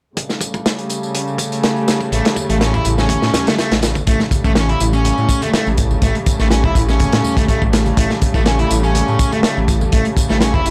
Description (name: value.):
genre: breakbeat, breaks.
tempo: 123 BPM.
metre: 4/4.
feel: swing 53% on 16ths.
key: unclear.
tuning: A4 = 441 Hz.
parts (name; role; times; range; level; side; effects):
warm studio string section; sustained chords; 0.2-10.7 s; C#3 to A3; -24 LUFS; equal; sidechain pumping, low-pass filter.
crunchy breakbeat drum kit; drums; 0.2-10.7 s; hi-hat, kick drum, snare drum; -20 LUFS; equal; high-pass filter on kick, high-pass filter on hats, high-pass filter on snare, high-pass filter on room.
tambourine; drums; 0.2-10.7 s; none; -33 LUFS; equal; none.
thick fuzz guitar; riff; 2.1-10.6 s; A3 to E4; -22 LUFS; equal; distortion, tube saturation, analog delay.
phased detuned saw bass; bass; 2.1-10.7 s; A1 to A2; -20 LUFS; equal; phaser, tube saturation.
congas; percussion; 2.4-10.6 s; none; -31 LUFS; equal; none.
room: small room ambience.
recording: dry, gritty hardware recording, transformer saturation.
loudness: -16 LUFS.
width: mono.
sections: 0.2-4.1 A section; 4.1-10.7 B section.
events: filter sweep on string section 0.2-4.1.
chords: 0.2 A7.